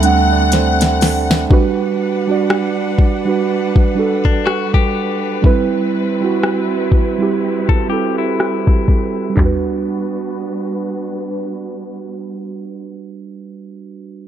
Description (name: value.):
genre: contemporary R&B.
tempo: 61 BPM.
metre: 4/4.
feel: swing 58% on 16ths.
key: G major.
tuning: A4 = 442 Hz.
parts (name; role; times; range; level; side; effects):
direct-recorded clean electric guitar; melody; 0.0-0.5 s; G4; -43 LUFS; left 2 dB; none.
muted felt-like synth keys; accompaniment; 0.0-14.3 s; G3 to B5; -18 LUFS; right 5 dB; chorus.
warm studio string section; sustained chords; 0.0-12.9 s; D3 to F#5; -24 LUFS; left 4 dB; sidechain pumping.
soft 808-style bass; bass; 0.0-1.5 s; D2; -18 LUFS; left 1 dB; none.
smooth R&B drum kit; drums; 0.0-9.6 s; handclaps, hi-hat, kick drum, rim click, snare drum, toms; -14 LUFS; left 1 dB; none.
direct-recorded clean electric guitar; arpeggios; 4.2-9.3 s; D4 to A4; -24 LUFS; left 14 dB; tape echo.
room: little or no reverb.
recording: low-pass filter.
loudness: -14 LUFS.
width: side -10 dB against mid.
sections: 0.0-1.5 A section; 1.5-9.4 B section; 9.4-13.3 C section.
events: synth keys fill 0.0-1.5; drum fill 0.5-1.5.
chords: 0.0 D7sus4; 1.5 Gmaj7; 5.4 Cmaj7; 9.4 Gmaj7.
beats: 0.52 | 1.50 2.49 3.47 4.45 | 5.44 6.42 7.41 8.39 | 9.37 10.36 11.34 12.32.